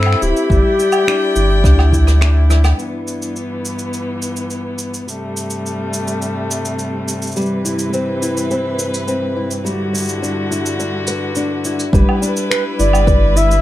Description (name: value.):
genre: folktronica.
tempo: 105 BPM.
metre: 4/4.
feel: straight.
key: G major.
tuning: A4 = 440 Hz.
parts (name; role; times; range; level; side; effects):
mellow clarinet; melody; 0.0-2.5, 12.5-13.6 s; G4 to E5; -17 LUFS; left 2 dB; none.
rich string quartet; sustained chords; 0.0-13.6 s; G2 to B5; -22 LUFS; left 1 dB; none.
fingerpicked old ladder-braced acoustic guitar; arpeggios; 0.0-3.3, 7.4-13.6 s; G3 to B4; -20 LUFS; left 1 dB; digital delay.
warm sub bass; bass; 0.0-2.7, 11.9-13.6 s; D1 to G2; -12 LUFS; equal; none.
finger snaps, woodblock, cabasa and rim click; drums; 0.0-13.6 s; none; -23 LUFS; right 1 dB; none.
electronic kick drum; drums; 0.5-2.0, 11.9-13.2 s; none; -14 LUFS; equal; none.
room: light reverb.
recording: none.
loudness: -14 LUFS.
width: side -14 dB against mid.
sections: 0.0-2.8 A section; 2.8-11.9 B section; 11.9-13.6 C section.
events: drum fill 1.6-2.8; band accent 2.6.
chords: 0.0 Cmaj7/G; 0.5 Em7/G; 2.8 G6; 5.1 Am7/G; 7.4 Cmaj7/G; 9.6 Em7/G; 11.9 G6.